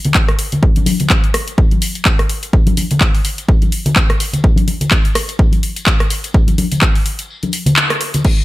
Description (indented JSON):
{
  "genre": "house",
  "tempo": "126 BPM",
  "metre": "4/4",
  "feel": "swing 56% on 16ths",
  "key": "none",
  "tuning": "none",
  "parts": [
    { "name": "house drum kit", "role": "drums", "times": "0.0-8.4 s", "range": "crash cymbal, handclaps, hi-hat, rim click", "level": "-17 LUFS", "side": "equal", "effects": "sidechain pumping on hats, sidechain pumping on cymbals" },
    { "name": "tambourine and congas", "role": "percussion", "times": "0.0-8.2 s", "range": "none", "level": "-18 LUFS", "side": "left 2 dB", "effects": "sidechain pumping on perc, low-pass filter on perc" },
    { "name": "electronic kick drum", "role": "drums", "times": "0.1-8.4 s", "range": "none", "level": "-13 LUFS", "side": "equal", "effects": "none" }
  ],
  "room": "digital ambience",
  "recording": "none",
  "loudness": "-12 LUFS",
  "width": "side -17 dB against mid",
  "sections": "0.0-8.2 A section",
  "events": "filter sweep on drum 0.0-8.2; kick drops out 7.3-8.2; band accent 7.8",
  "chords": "none",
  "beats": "0.15 | 0.63 1.11 1.58 2.06 | 2.54 3.01 3.49 3.96 | 4.44 4.92 5.39 5.87 | 6.34 6.82 7.30 7.77 | 8.25"
}